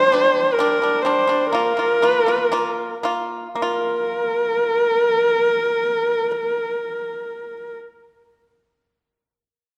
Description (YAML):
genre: mongolian traditional, Mongolian folk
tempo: 55-66 BPM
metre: 4/4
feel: straight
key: Bb gong mode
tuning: A4 = 442 Hz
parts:
  - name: warm horsehead fiddle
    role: melody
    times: 0.0-7.8 s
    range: Bb4 to C5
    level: -20 LUFS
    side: equal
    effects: none
  - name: pipa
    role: arpeggios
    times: 0.0-7.8 s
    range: G3 to F4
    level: -26 LUFS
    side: equal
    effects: none
room: wet scoring stage reverb, RT60 1.7 s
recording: dark, warm production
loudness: -20 LUFS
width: mono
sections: 0.0-3.6 A section; 3.6-7.9 B section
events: slowing down 0.0-3.6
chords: 0.0 G5; 1.5 Bb5